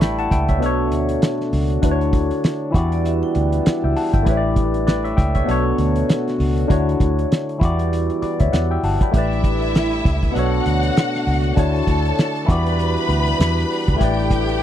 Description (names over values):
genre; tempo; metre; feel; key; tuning
lush 1970s-style soul; 99 BPM; 4/4; swing 58% on 16ths; E dorian; A4 = 440 Hz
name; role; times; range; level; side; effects
barky tine electric piano; accompaniment; 0.0-14.6 s; B2 to C#6; -21 LUFS; left 2 dB; overdrive, phaser
mellow brass ensemble; sustained chords; 0.0-14.6 s; G3 to C#5; -28 LUFS; right 1 dB; none
vintage muted fingered electric bass; bass; 0.0-14.6 s; G1 to E2; -20 LUFS; equal; none
cloth-damped thuddy drum kit; drums; 0.0-14.6 s; hi-hat, kick drum, snare drum; -18 LUFS; equal; none
vibraphone with medium hard mallets; texture; 2.9-4.1 s; D5 to G5; -33 LUFS; right 6 dB; none
warm studio string section; second line; 9.1-14.6 s; E4 to B5; -24 LUFS; equal; none
room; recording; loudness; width
little or no reverb; dry, close 1970s-style studio recording; -16 LUFS; side -11 dB against mid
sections
0.0-14.6 A section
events
none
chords
0.0 A7sus4; 0.6 Bm7; 1.8 Dmaj7; 2.7 Em7; 4.3 A7sus4; 5.5 Bm7; 6.7 Dmaj7; 7.6 Em7; 9.1 A7sus4; 10.4 Bm7; 11.6 Dmaj7; 12.5 Em7; 14.0 A7sus4